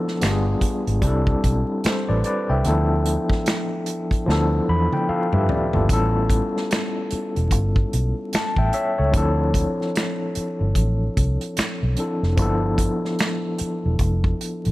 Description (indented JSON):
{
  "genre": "R&B, neo-soul",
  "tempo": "74 BPM",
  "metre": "4/4",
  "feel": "swing 60% on 16ths",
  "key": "D dorian",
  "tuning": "A4 = 440 Hz",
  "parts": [
    { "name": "overdriven tine electric piano", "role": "accompaniment", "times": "0.0-14.7 s", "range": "E3 to B5", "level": "-23 LUFS", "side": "left 1 dB", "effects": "fast tremolo" },
    { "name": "unplugged drum kit", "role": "drums", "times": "0.1-14.7 s", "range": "finger snaps, hi-hat, kick drum, snare drum, toms", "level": "-23 LUFS", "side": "equal", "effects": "none" },
    { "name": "vintage muted fingered electric bass", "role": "bass", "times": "0.2-14.7 s", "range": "E1 to G2", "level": "-21 LUFS", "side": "equal", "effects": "none" }
  ],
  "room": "studio reverb",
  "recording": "vinyl crackle",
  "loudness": "-19 LUFS",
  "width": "side -18 dB against mid",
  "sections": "0.0-5.9 A section; 5.9-14.7 B section",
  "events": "drum fill 4.3-5.9; tine electric piano fill 4.3-5.9",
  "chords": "0.2 G7b9; 1.0 C69; 2.6 Dm69; 5.9 A9; 9.1 Dm7; 12.4 G13"
}